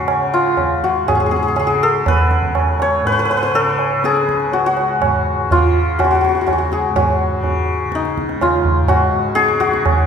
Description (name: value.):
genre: indian classical, Hindustani.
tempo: 123 BPM.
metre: 4/4.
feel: straight.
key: C# raga charukeshi.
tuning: A4 = 441 Hz.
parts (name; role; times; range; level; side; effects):
santur; melody; 0.0-10.1 s; D#4 to C#5; -16 LUFS; left 2 dB; none.
tanpura; drone; 0.0-10.1 s; C#2 to C#3; -24 LUFS; equal; none.
tabla; percussion; 0.1-10.0 s; none; -19 LUFS; right 3 dB; none.
room: wet recital hall reverb, RT60 1.8 s.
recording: recorded in a church or concert hall.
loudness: -14 LUFS.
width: side -7 dB against mid.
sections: 0.0-10.1 A section.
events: speeding up 0.0-10.1.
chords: none.